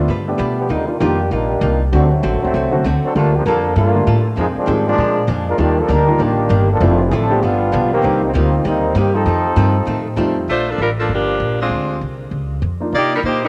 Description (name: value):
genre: jazz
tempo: 196 BPM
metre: 4/4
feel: swing 62% on 8ths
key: Bb major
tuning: A4 = 442 Hz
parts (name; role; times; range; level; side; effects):
- warm grand piano; accompaniment; 0.0-10.5, 12.8-13.4 s; D3 to G4; -24 LUFS; equal; none
- upright bass; bass; 0.0-13.5 s; D1 to C3; -21 LUFS; equal; none
- archtop guitar, miked and amplified; accompaniment; 0.1-10.4 s; F2 to B4; -27 LUFS; equal; none
- clear trombone section; second line; 0.6-10.1 s; D3 to Bb4; -20 LUFS; equal; none
- warm saxophone section; melody; 10.5-13.5 s; F3 to D5; -21 LUFS; equal; none
room: moderate plate reverb, RT60 3.4 s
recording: none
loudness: -16 LUFS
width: mono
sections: 0.7-10.5 A section; 10.5-13.5 B section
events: trombone section solo 0.7-10.5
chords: 0.1 G7; 0.7 Cm11; 1.9 D7; 3.1 Gm9; 4.4 Fm7; 5.0 Bb7; 5.6 Ebmaj7; 6.8 Dm7; 7.4 G7; 8.0 Cm7; 9.3 F7; 10.5 Bb6; 11.7 Dm7b5; 12.3 Db; 12.9 Cm11